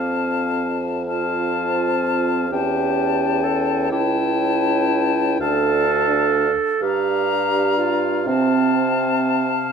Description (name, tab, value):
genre	classical, slow romantic movement for wind quintet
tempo	42 BPM (dotted quarters)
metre	6/8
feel	rubato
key	F major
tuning	A4 = 440 Hz
part	bright silver concert flute	melody	0.0-9.7 s	A5 to Bb5	-25 LUFS	left 12 dB	none
part	warm oboe	second line	0.0-9.7 s	F5 to G5	-26 LUFS	left 2 dB	none
part	warm French horn	accompaniment	0.0-9.7 s	C4 to D4	-26 LUFS	left 2 dB	none
part	clear bassoon	bass	0.0-9.7 s	C#2 to C3	-24 LUFS	right 1 dB	none
part	warm clarinet	accompaniment	1.1-9.7 s	C4 to A4	-22 LUFS	right 8 dB	none
room	moderate concert hall reverb, RT60 2.3 s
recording	none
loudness	-17 LUFS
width	side -6 dB against mid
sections	0.0-9.7 A section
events	none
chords	0.0 F; 2.5 A7/E; 5.4 Dm; 6.8 Gm7; 8.3 F/C